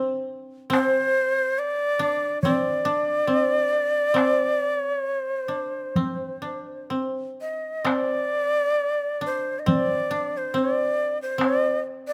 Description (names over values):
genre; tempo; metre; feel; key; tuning
japanese traditional, Japanese chamber music; 60-71 BPM; 4/4; rubato; unclear; A4 = 442 Hz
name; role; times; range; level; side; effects
koto; second line; 0.0-12.1 s; C4 to D4; -29 LUFS; equal; none
shakuhachi; melody; 0.7-12.1 s; C5 to Eb5; -26 LUFS; equal; none
taiko ensemble; percussion; 0.7-11.6 s; none; -28 LUFS; equal; none
room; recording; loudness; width
light reverb; close, detailed microphones; -24 LUFS; mono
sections
0.0-7.9 A section; 7.9-12.1 B section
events
none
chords
none